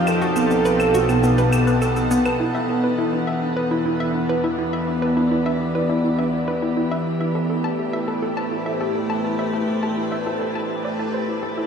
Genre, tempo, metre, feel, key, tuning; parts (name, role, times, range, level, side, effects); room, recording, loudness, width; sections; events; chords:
ambient, sequencer-driven space music; 103 BPM; 4/4; straight; E minor; A4 = 440 Hz
pulse-width lead; melody; 0.0-1.8 s; A4; -26 LUFS; right 2 dB; chorus, tape echo
evolving wavetable pad; sustained chords; 0.0-11.7 s; B2 to F#5; -22 LUFS; left 1 dB; chorus, built-in reverb, phaser
hollow square pluck; riff; 0.0-11.6 s; B3 to A5; -24 LUFS; right 1 dB; chorus, cassette tape, tape echo
analog drone; bass; 0.6-11.7 s; B1 to A2; -30 LUFS; right 1 dB; chorus
bubbling stepped-filter texture; texture; 0.0-11.7 s; D4 to A5; -33 LUFS; right 1 dB; chorus, built-in reverb
cabasa and claves; percussion; 0.1-2.4 s; -32 LUFS; equal; tape echo
warbly dusty pluck; arpeggios; 2.4-11.7 s; D4 to C5; -33 LUFS; right 2 dB
wet shimmer reverb, RT60 9.4 s; played on a big sound system in a bare room, large studio reverb; -19 LUFS; side -7 dB against mid
0.0-2.4 A section; 2.4-11.7 B section
fade-in on synth drone 2.4-11.7
0.1 B7; 2.4 Em7; 7.1 Am7